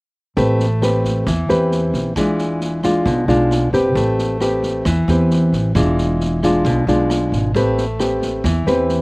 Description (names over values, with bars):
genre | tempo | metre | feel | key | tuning
bossa nova | 134 BPM | 4/4 | straight | A minor | A4 = 442 Hz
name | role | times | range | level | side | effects
nylon-string guitar | accompaniment | 0.4-9.0 s | B2 to B4 | -16 LUFS | equal | none
upright bass | bass | 0.4-9.0 s | E1 to E2 | -20 LUFS | right 1 dB | none
swinging big-band drum kit | drums | 0.4-8.9 s | kick drum, rim click, snare drum | -26 LUFS | equal | none
room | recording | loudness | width
little or no reverb | recorded outdoors, with no room sound | -15 LUFS | side -26 dB against mid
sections
0.4-9.0 A section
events
none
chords
0.4 Am9; 2.2 E7b9; 4.0 Am9; 5.8 E7b9; 7.5 Am9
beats
| 0.36 0.81 1.26 1.71 | 2.16 2.61 3.06 3.51 | 3.96 4.40 4.85 5.30 | 5.75 6.20 6.65 7.10 | 7.54 7.99 8.44 8.89